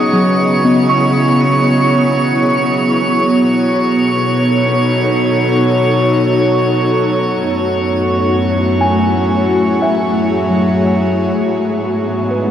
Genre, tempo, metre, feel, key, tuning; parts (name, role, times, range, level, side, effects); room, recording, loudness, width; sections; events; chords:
ambient; free time; F# dorian; A4 = 441 Hz
ethereal airy pad; sustained chords; 0.0-12.5 s; A3 to D#5; -15 LUFS; equal; ensemble chorus, built-in reverb
muted felt-like synth keys; arpeggios; 0.0-12.5 s; F#3 to D#6; -18 LUFS; equal; chorus, diffuse ambient delay
warm chamber cello section; bass; 0.0-12.5 s; F#2 to C#3; -20 LUFS; right 1 dB
hand-pumped harmonium; drone; 0.0-12.5 s; F#3; -22 LUFS; equal
drifting glass-harmonics texture; texture; 0.0-11.4 s; C#5 to C#6; -19 LUFS; equal; chorus, built-in reverb
wet huge ambient reverb, RT60 7.2 s; -11 LUFS; side -10 dB against mid
0.0-11.4 A section; 11.4-12.5 B section
0.0 C#m9; 3.4 B9; 7.4 F#m9; 11.4 G#m7